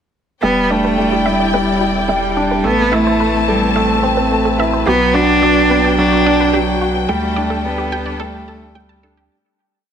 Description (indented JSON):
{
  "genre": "piano and strings electronica",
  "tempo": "108 BPM",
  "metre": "4/4",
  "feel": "straight",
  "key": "unclear",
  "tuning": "A4 = 440 Hz",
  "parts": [
    { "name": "dark cello", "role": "melody", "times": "0.4-9.0 s", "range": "F#3 to D4", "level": "-16 LUFS", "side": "right 1 dB", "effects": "none" },
    { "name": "dark studio string section", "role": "sustained chords", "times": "0.4-9.3 s", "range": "F#3 to A5", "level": "-21 LUFS", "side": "left 4 dB", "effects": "none" },
    { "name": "wide unison pluck", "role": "arpeggios", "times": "0.4-9.3 s", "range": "F#4 to A5", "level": "-25 LUFS", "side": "right 2 dB", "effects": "none" },
    { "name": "felt-muted upright piano", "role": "riff", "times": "0.4-9.3 s", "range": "F#3 to A4", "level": "-17 LUFS", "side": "right 1 dB", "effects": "tape echo" },
    { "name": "warm sub bass", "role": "bass", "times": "0.4-9.3 s", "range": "E1 to D2", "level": "-24 LUFS", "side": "left 1 dB", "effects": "none" }
  ],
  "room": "moderate echo chamber reverb, RT60 2.2 s",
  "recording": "none",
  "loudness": "-12 LUFS",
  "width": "side -8 dB against mid",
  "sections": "0.4-9.3 build",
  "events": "build-up 0.4-9.3; fade-out 6.4-9.3",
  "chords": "0.4 Em7; 2.7 Amadd9; 4.9 Gmaj7/B; 7.1 Dsus4"
}